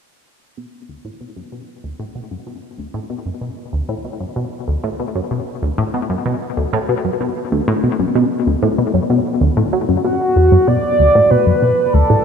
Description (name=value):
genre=ambient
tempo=95 BPM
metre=4/4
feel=straight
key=B minor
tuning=A4 = 442 Hz
part: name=tight sequenced synth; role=riff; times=0.6-12.2 s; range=D2 to F#3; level=-16 LUFS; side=equal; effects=chorus, phaser, ping-pong delay
part: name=pulse-width lead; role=melody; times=10.0-12.2 s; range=F#4 to D5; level=-13 LUFS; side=equal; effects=chorus, vintage 12-bit sampler grit, ping-pong delay
room=wet plate reverb, RT60 3.8 s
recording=dreamy mix soaked in reverb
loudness=-14 LUFS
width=side -7 dB against mid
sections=0.6-10.7 A section; 10.7-12.2 B section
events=fade-in on synth arpeggio sound 0.6-10.7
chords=0.6 Bm